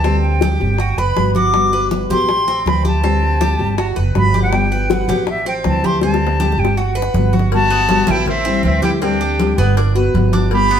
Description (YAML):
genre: latin, Cuban son and guajira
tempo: 160 BPM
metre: 4/4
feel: straight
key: G major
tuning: A4 = 443 Hz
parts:
  - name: silver concert flute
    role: melody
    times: 0.0-10.8 s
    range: E5 to D6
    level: -19 LUFS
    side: equal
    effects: none
  - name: nylon-string guitar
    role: accompaniment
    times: 0.0-10.8 s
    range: D3 to G4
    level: -21 LUFS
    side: left 5 dB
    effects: none
  - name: Cuban tres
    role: arpeggios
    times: 0.0-10.8 s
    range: B3 to B4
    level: -24 LUFS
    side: right 1 dB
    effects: none
  - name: upright bass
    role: bass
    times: 0.0-10.8 s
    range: F#1 to D2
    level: -18 LUFS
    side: right 2 dB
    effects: none
  - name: bongos and cowbell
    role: percussion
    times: 0.0-10.7 s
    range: none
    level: -25 LUFS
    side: left 6 dB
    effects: none
  - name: congas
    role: percussion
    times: 0.1-10.8 s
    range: none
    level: -23 LUFS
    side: left 1 dB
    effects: none
  - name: brilliant trumpet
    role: second line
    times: 7.5-10.8 s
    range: C4 to G4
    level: -25 LUFS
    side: right 3 dB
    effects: none
room: wet stone room reverb, RT60 1.3 s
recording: band playing live in one room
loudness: -13 LUFS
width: side -8 dB against mid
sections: 0.0-7.5 A section; 7.5-10.8 B section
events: drum fill 6.0-7.5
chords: 0.0 D7sus4; 0.8 Gmaj7; 2.3 Am7; 3.0 D7sus4; 3.8 Gmaj7; 5.3 Am7; 6.0 D7sus4; 6.8 Gmaj7; 8.3 Am7; 9.0 D7sus4; 9.8 Gmaj7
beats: | 0.05 0.42 0.79 1.17 | 1.54 1.91 2.29 2.66 | 3.03 3.41 3.78 4.15 | 4.53 4.90 5.28 5.65 | 6.02 6.40 6.77 7.14 | 7.52 7.89 8.27 8.64 | 9.02 9.39 9.76 10.14 | 10.51